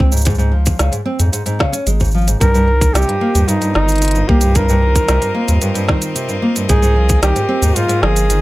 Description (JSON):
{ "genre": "folktronica", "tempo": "112 BPM", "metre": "4/4", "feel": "straight", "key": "unclear", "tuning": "A4 = 440 Hz", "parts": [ { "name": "nylon-string guitar", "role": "arpeggios", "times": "0.0-8.4 s", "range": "G2 to Db4", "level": "-18 LUFS", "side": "equal", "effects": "none" }, { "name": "round analog bass", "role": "bass", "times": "0.0-8.4 s", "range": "G1 to F2", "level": "-14 LUFS", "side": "equal", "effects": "none" }, { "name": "electronic kick drum", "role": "drums", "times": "0.0-7.2 s", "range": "none", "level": "-17 LUFS", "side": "equal", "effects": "none" }, { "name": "organic electronic drum kit", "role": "drums", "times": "0.1-8.4 s", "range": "cabasa, hi-hat, snare drum", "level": "-20 LUFS", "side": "right 1 dB", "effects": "overdrive" }, { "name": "mellow flugelhorn", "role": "melody", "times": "2.4-8.4 s", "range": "Eb4 to Bb4", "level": "-18 LUFS", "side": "equal", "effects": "none" }, { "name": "rich string quartet", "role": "sustained chords", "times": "2.4-8.4 s", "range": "C4 to Eb5", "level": "-26 LUFS", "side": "equal", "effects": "none" } ], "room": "light reverb", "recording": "none", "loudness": "-12 LUFS", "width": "side -18 dB against mid", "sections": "0.0-8.4 A section", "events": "none", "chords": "0.0 Db; 2.4 Cm7; 6.7 Fm7" }